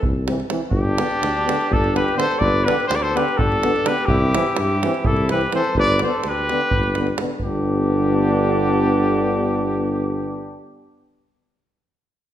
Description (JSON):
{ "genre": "balkan folk, Balkan brass band", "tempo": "251 BPM (eighths)", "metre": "7/8", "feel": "straight", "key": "G major", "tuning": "A4 = 440 Hz", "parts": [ { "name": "warm trumpet", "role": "melody", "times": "0.0-10.6 s", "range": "G4 to D5", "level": "-23 LUFS", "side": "equal", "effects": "none" }, { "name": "dark tuba", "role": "bass", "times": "0.0-10.6 s", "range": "G1 to G2", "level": "-22 LUFS", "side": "equal", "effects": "none" }, { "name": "davul", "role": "percussion", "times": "0.0-7.7 s", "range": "none", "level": "-25 LUFS", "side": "right 2 dB", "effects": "none" }, { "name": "bright trombone", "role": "accompaniment", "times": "0.3-10.6 s", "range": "D3 to E3", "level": "-27 LUFS", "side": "right 5 dB", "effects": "none" }, { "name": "warm euphonium", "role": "accompaniment", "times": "0.3-10.6 s", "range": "B3 to C4", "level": "-27 LUFS", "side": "left 4 dB", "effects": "none" }, { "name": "warm flugelhorn", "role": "second line", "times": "0.7-10.6 s", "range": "D4 to B4", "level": "-27 LUFS", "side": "left 1 dB", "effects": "none" } ], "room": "wet recital hall reverb, RT60 1.4 s", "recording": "none", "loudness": "-17 LUFS", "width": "side -11 dB against mid", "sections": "0.0-7.4 A section; 7.4-10.8 B section", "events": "none", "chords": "0.0 C; 0.7 G; 4.1 C; 5.8 G" }